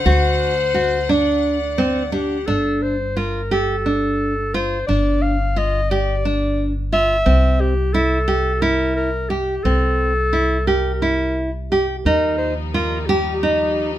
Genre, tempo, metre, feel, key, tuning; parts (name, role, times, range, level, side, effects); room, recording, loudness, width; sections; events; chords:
contemporary instrumental, chamber music in an uneven meter; 175 BPM (eighths); 7/8; straight; G minor; A4 = 435 Hz
mellow clarinet; melody; 0.0-14.0 s; G4 to F5; -22 LUFS; left 2 dB
rich studio string section; sustained chords; 0.0-2.4, 12.1-14.0 s; D3 to F#5; -28 LUFS; left 4 dB
nylon-string guitar; arpeggios; 0.1-13.9 s; C4 to G4; -20 LUFS; right 1 dB
upright bass; bass; 0.1-14.0 s; G1 to Eb2; -22 LUFS; equal
light reverb; -16 LUFS; side -13 dB against mid
0.0-2.5 A section; 2.5-14.0 B section
0.0 D; 2.5 Gsus2; 7.3 C; 12.1 Ebadd9